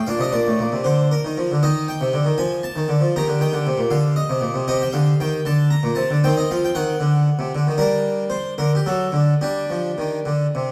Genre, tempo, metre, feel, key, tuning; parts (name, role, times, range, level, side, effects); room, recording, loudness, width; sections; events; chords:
classical, baroque-style suite movement for harpsichord; 78 BPM (dotted quarters); 6/8; rubato; G minor from 4.7 s; A4 = 440 Hz
harpsichord; solo; 0.0-10.7 s; A2 to Bb5; -20 LUFS; equal
moderate recital hall reverb, RT60 1.8 s; -20 LUFS; mono
0.0-10.7 A section
0.1 Bb; 1.6 Eb; 2.4 Dm/F; 3.1 Eb; 4.7 Cm; 5.4 Bbmaj9; 6.2 Cm/Eb; 7.0 D7; 7.8 Gm; 8.6 D; 9.4 G5